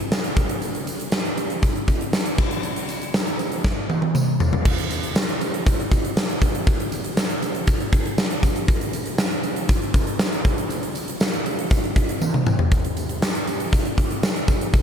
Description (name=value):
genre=pop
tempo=119 BPM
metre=4/4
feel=straight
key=none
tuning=none
part: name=huge arena drum kit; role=drums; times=0.1-14.8 s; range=crash cymbal, hi-hat, kick drum, snare drum, tambourine, toms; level=-20 LUFS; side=equal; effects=none
part: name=tambourine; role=percussion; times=0.1-14.8 s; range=none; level=-41 LUFS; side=right 2 dB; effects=none
room=light reverb, small room ambience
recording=none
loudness=-20 LUFS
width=side -8 dB against mid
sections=0.0-4.7 A section; 4.7-14.8 B section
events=drum fill 3.6-4.7, 12.2-12.7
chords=none